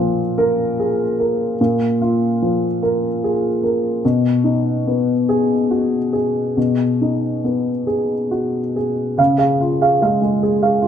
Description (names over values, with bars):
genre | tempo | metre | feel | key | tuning
neoclassical minimalist piano | 45-50 BPM (dotted quarters) | 6/8 | rubato | G# dorian | A4 = 440 Hz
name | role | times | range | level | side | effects
dark upright piano | solo | 0.0-10.9 s | A#2 to E#5 | -16 LUFS | equal | none
room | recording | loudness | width
light reverb | close, detailed microphones | -16 LUFS | side -8 dB against mid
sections
0.0-9.2 A section; 9.2-10.9 A section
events
none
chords
0.0 A#5; 4.0 G#m/B; 9.2 C#